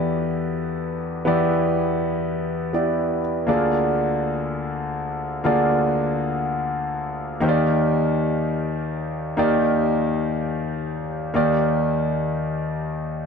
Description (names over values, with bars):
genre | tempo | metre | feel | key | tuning
pop | free time | none | none | unclear | A4 = 440 Hz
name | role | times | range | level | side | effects
warm concert grand piano | solo | 0.0-13.3 s | D2 to F5 | -20 LUFS | equal | tube saturation, digital delay
room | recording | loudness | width
moderate lush hall reverb, RT60 2.8 s | none | -20 LUFS | side -6 dB against mid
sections
0.0-11.3 A section; 11.3-13.3 B section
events
none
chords
0.0 Em7; 3.5 Bb7/D; 7.4 Ebmaj7